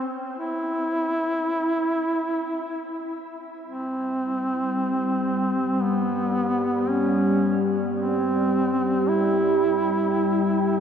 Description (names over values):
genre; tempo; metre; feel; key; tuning
ambient; free time; none; none; unclear; A4 = 440 Hz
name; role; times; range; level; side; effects
warm duduk; melody; 0.0-10.8 s; B3 to E4; -24 LUFS; equal; shimmer reverb, tape echo
deep dark ambient pad; sustained chords; 4.4-10.8 s; G3 to G5; -23 LUFS; equal; chorus, built-in reverb, shimmer reverb
room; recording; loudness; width
wet huge ambient reverb, RT60 9.0 s; none; -21 LUFS; side -8 dB against mid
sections
0.0-10.8 A section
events
fade-out 9.4-10.8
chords
none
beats
free time